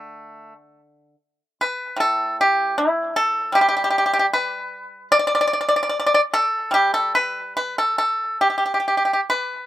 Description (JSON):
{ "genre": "chinese traditional, Chinese solo plucked strings", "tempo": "65-78 BPM", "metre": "4/4", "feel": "rubato", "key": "G gong mode", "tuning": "A4 = 442 Hz", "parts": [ { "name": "pipa", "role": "solo", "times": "0.0-9.7 s", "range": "A2 to D5", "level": "-18 LUFS", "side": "equal", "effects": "none" } ], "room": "little or no reverb", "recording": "recorded outdoors, with no room sound", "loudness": "-18 LUFS", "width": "side -13 dB against mid", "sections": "0.0-9.7 A section", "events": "none", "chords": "none" }